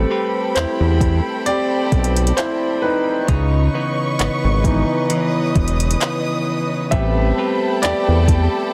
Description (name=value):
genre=contemporary R&B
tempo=66 BPM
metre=4/4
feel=swing 54% on 16ths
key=unclear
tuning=A4 = 440 Hz
part: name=clear grand piano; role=accompaniment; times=0.0-8.7 s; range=E3 to E5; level=-23 LUFS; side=equal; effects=none
part: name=muted studio string section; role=sustained chords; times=0.0-8.7 s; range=C4 to D#6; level=-28 LUFS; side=equal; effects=none
part: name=direct-recorded clean electric guitar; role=arpeggios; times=0.0-8.7 s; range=C#3 to B4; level=-26 LUFS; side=equal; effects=tape echo
part: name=fat analog bass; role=bass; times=0.0-8.5 s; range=E1 to E2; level=-19 LUFS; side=equal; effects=none
part: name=smooth R&B drum kit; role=drums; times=0.6-8.5 s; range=handclaps, hi-hat, kick drum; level=-22 LUFS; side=equal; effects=overdrive
room=light reverb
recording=dense, heavily limited modern master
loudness=-18 LUFS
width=mono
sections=0.0-8.7 A section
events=grand piano solo 0.0-8.7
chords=0.0 Am9; 3.3 C#m9; 6.9 Am9